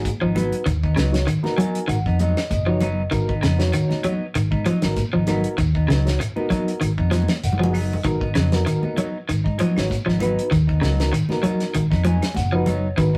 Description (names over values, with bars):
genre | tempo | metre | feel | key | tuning
afrobeat | 97 BPM | 4/4 | swing 54% on 16ths | G# dorian | A4 = 439 Hz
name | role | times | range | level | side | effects
bright reed electric piano | accompaniment | 0.0-13.2 s | B3 to G#5 | -29 LUFS | equal | medium tremolo
vintage muted fingered electric bass | bass | 0.0-13.2 s | F#1 to G#2 | -25 LUFS | equal | none
shekere | percussion | 0.0-13.2 s | none | -35 LUFS | equal | none
damped 70s drum kit | drums | 0.1-13.2 s | hi-hat, kick drum, snare drum | -30 LUFS | equal | none
congas | percussion | 0.1-13.1 s | none | -32 LUFS | equal | none
electric guitar at the edge of break-up | arpeggios | 0.2-13.2 s | C#3 to F#3 | -25 LUFS | equal | none
clean electric guitar | stabs | 0.2-13.2 s | F#3 to D#4 | -31 LUFS | equal | harmonic tremolo
claves | percussion | 0.4-13.2 s | none | -42 LUFS | equal | none
room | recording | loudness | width
moderate studio reverb, RT60 0.5 s | rough rehearsal-room recording | -21 LUFS | mono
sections
0.0-13.2 A section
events
reed electric piano fill 1.3-3.1, 7.1-8.1, 11.8-13.0; drum fill 7.1-8.1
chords
0.0 G#m7